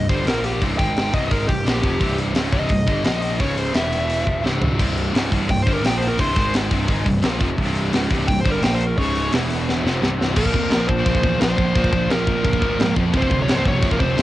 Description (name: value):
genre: heavy metal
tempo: 172 BPM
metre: 4/4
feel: straight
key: C phrygian dominant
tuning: A4 = 440 Hz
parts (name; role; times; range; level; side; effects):
- dark smooth lead guitar; melody; 0.0-14.2 s; G4 to G5; -24 LUFS; equal; overdrive, cassette tape
- heavy high-gain guitar; riff; 0.0-14.2 s; C2 to Bb3; -26 LUFS; right 5 dB; distortion, cassette tape
- scooped high-gain guitar; riff; 0.0-14.2 s; C2 to Bb3; -26 LUFS; left 5 dB; distortion, cassette tape
- fuzz picked electric bass; bass; 0.0-14.2 s; C1 to Ab2; -25 LUFS; equal; overdrive
- tight metal drum kit; drums; 0.1-14.2 s; china cymbal, crash cymbal, hi-hat, kick drum, snare drum, toms; -22 LUFS; equal; cassette tape
- thick fuzz guitar; riff; 4.8-14.2 s; C2 to Bb3; -26 LUFS; equal; distortion, cassette tape
room: little or no reverb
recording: home recording on cassette, nothing above 10.8 kHz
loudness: -17 LUFS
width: side -15 dB against mid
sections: 0.0-10.4 A section; 10.4-14.2 B section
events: lead electric guitar solo 0.0-10.4; drum fill 4.4-4.8, 9.7-10.4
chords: 0.3 Bb5; 0.6 C5; 0.8 Ab5; 1.1 C5; 3.1 Bb5; 3.4 Db5; 3.8 E5; 4.3 C5; 5.8 Bb5; 6.2 C5; 6.4 Ab5; 6.7 C5; 8.6 Bb5; 9.0 Db5; 9.3 E5; 9.8 C5; 10.4 Bb5; 13.1 F5/C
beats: 0.27 | 0.62 0.97 1.31 1.66 | 2.01 2.36 2.71 3.05 | 3.40 3.75 4.10 4.45 | 4.79 5.14 5.49 5.84 | 6.19 6.54 6.88 7.23 | 7.58 7.93 8.28 8.62 | 8.97 9.32 9.67 10.01 | 10.36 10.71 11.05 11.40 | 11.75 12.10 12.44 12.79 | 13.13 13.48 13.83 14.18